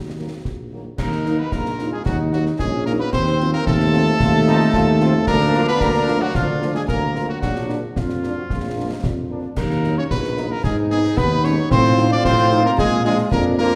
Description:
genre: military-style march for wind band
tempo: 112 BPM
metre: 2/4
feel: straight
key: unclear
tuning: A4 = 442 Hz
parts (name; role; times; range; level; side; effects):
- clear cornet; melody; 0.0-13.8 s; Eb4 to D5; -28 LUFS; equal; none
- warm euphonium; second line; 0.0-13.8 s; F3 to Gb4; -26 LUFS; equal; none
- mellow tuba; bass; 0.0-13.8 s; Bb1 to Bb2; -23 LUFS; equal; none
- mellow French horn section; accompaniment; 0.2-13.7 s; Eb3 to F4; -30 LUFS; equal; none
- concert snare drum, concert bass drum and clash cymbals; drums; 0.5-13.7 s; none; -28 LUFS; equal; none
- mellow hollow piccolo; second line; 1.0-13.6 s; F5 to D6; -30 LUFS; equal; none
- warm trombone section; sustained chords; 1.0-13.8 s; Bb3 to Gb4; -28 LUFS; equal; none
room: wet recital hall reverb, RT60 1.6 s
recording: recorded in a church or concert hall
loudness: -19 LUFS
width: mono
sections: 1.0-13.8 A section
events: none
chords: 0.0 Ebm; 3.1 F7/Eb; 5.3 Bb/D; 7.4 Bb; 9.6 Ebm; 10.6 Abm; 11.7 F7/A; 12.8 Bb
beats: 0.45 | 0.98 1.52 | 2.06 2.60 | 3.13 3.67 | 4.21 4.74 | 5.28 5.82 | 6.35 6.89 | 7.43 7.96 | 8.50 9.04 | 9.57 10.11 | 10.64 11.18 | 11.71 12.25 | 12.79 13.32

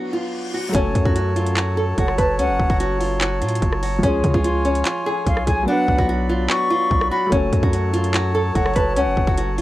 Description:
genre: hip hop, trap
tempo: 146 BPM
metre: 4/4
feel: half-time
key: F# harmonic minor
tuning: A4 = 440 Hz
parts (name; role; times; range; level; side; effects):
- nylon-string guitar; melody; 0.0-9.6 s; C#4 to B4; -23 LUFS; equal; analog delay
- felt-muted upright piano; accompaniment; 0.0-9.6 s; E#3 to B4; -27 LUFS; equal; none
- reverse cymbal; sound effects; 0.1-0.7 s; none; -33 LUFS; left 3 dB; none
- hand-pumped harmonium; sustained chords; 0.7-9.6 s; F#3 to B5; -26 LUFS; right 1 dB; none
- long sustained 808-style bass; bass; 0.7-9.6 s; F#1 to C#3; -23 LUFS; equal; none
- trap drum kit; drums; 0.7-9.6 s; handclaps, hi-hat, kick drum, rim click; -22 LUFS; equal; none
- reedy concert flute; second line; 2.0-2.8, 5.3-9.4 s; E#5 to C#6; -23 LUFS; left 2 dB; analog delay
room: little or no reverb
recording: dry, gritty hardware recording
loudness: -17 LUFS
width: side -16 dB against mid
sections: 0.7-9.6 A section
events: break 0.0-0.7; reverse cymbal 0.1-0.7; hi-hats muted 5.7-7.3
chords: 0.0 Bm; 0.7 F#m; 4.0 C#; 5.7 Bm; 7.3 F#m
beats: 0.34 | 0.75 1.16 1.57 1.98 | 2.39 2.80 3.21 3.62 | 4.03 4.44 4.86 5.27 | 5.68 6.09 6.50 6.91 | 7.32 7.73 8.14 8.55 | 8.96 9.38

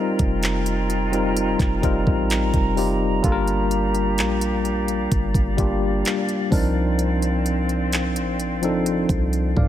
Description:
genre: contemporary R&B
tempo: 64 BPM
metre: 4/4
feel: straight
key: G minor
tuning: A4 = 440 Hz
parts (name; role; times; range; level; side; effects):
- tine electric piano; accompaniment; 0.0-9.7 s; F3 to F5; -22 LUFS; left 2 dB; medium stereo tremolo
- flute section; sustained chords; 0.0-9.7 s; C4 to Bb5; -28 LUFS; right 2 dB; none
- warm 808-style bass; bass; 0.2-9.7 s; F1 to G2; -24 LUFS; right 1 dB; none
- smooth R&B drum kit; drums; 0.2-9.7 s; handclaps, hi-hat, kick drum; -23 LUFS; right 1 dB; none
room: little or no reverb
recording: none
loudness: -19 LUFS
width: side -11 dB against mid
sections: 0.0-9.7 A section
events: none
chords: 0.0 F9sus4; 3.2 Gm7; 6.5 Cm11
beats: 0.42 1.36 2.30 | 3.24 4.17 5.11 6.05 | 6.99 7.92 8.86

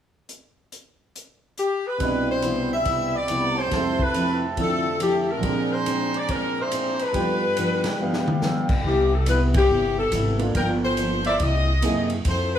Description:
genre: jazz, big band swing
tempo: 140 BPM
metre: 4/4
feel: swing 65% on 8ths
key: C major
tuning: A4 = 443 Hz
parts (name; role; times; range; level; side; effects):
- swinging big-band drum kit; drums; 0.3-12.4 s; crash cymbal, hi-hat, kick drum, ride cymbal, snare drum, toms; -29 LUFS; equal; none
- edgy saxophone section; melody; 1.6-12.6 s; G4 to E5; -24 LUFS; left 2 dB; none
- fingerpicked plugged-in steel-string acoustic guitar; accompaniment; 2.0-12.6 s; G2 to A4; -28 LUFS; left 2 dB; none
- warm concert grand piano; accompaniment; 2.0-12.1 s; C2 to E5; -28 LUFS; right 5 dB; none
- mellow trumpet section; stabs; 2.0-11.4 s; C4 to E6; -31 LUFS; right 1 dB; none
- upright bass; bass; 8.8-12.6 s; G1 to F#2; -23 LUFS; equal; none
room: moderate large studio reverb, RT60 1.1 s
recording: small room ambience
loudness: -20 LUFS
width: side -9 dB against mid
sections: 0.3-2.0 A section; 2.0-8.8 B section; 8.8-12.6 C section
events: drum fill 8.0-8.4; band accent 9.5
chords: 0.3 N.C.; 2.0 Cmaj7; 3.7 Fmaj7; 5.4 Bb9; 7.1 G7; 8.8 Cmaj7; 10.6 Gm7; 11.4 C7alt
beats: | 0.30 0.72 1.15 1.58 | 2.01 2.44 2.86 3.29 | 3.72 4.15 4.57 5.00 | 5.43 5.86 6.28 6.71 | 7.14 7.57 7.99 8.42 | 8.85 9.27 9.70 10.13 | 10.55 10.98 11.40 11.83 | 12.26

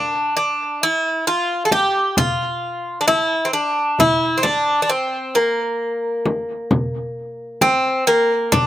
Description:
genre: Turkish makam ensemble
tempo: 132 BPM (eighths)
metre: 10/8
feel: straight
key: unclear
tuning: A4 = 440 Hz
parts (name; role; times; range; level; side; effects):
- Greek bouzouki; melody; 0.0-8.7 s; Bb3 to A4-30c; -17 LUFS; equal; none
- darbuka; percussion; 0.4-8.7 s; none; -28 LUFS; right 1 dB; none
- frame drum; percussion; 1.7-8.7 s; none; -21 LUFS; left 2 dB; none
room: little or no reverb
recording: recorded outdoors, with no room sound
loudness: -16 LUFS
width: side -13 dB against mid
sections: 0.0-8.7 A section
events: none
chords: none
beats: 0.35 0.80 1.26 1.71 2.17 2.62 3.08 3.53 | 3.99 4.44 4.89 5.35 5.80 6.25 6.71 7.16 7.61 8.07 | 8.52

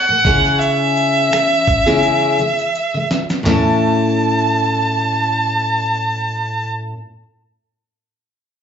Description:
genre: acoustic pop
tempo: 84 BPM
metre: 4/4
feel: swing 55% on 16ths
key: A major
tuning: A4 = 445 Hz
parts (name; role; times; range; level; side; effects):
- clear violin; melody; 0.0-6.7 s; E5 to A5; -16 LUFS; right 2 dB; plate reverb, slapback echo
- picked steel-string acoustic guitar; accompaniment; 0.1-7.0 s; A2 to A4; -18 LUFS; left 2 dB; plate reverb, slapback echo
- dusty soul sampler-style drum kit; drums; 0.2-3.6 s; finger snaps, handclaps, kick drum, shaker, snare drum, toms; -19 LUFS; right 1 dB; overdrive
room: moderate club reverb, RT60 0.8 s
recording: live gig heard through the venue's PA, club reverb, nothing above 7.7 kHz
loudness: -14 LUFS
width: side -7 dB against mid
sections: 0.0-3.5 A section; 3.5-6.3 B section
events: drum fill 2.0-3.5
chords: 0.2 C#m; 3.5 A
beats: | 0.60 1.32 2.03 2.75 | 3.47 4.18 4.90 5.62

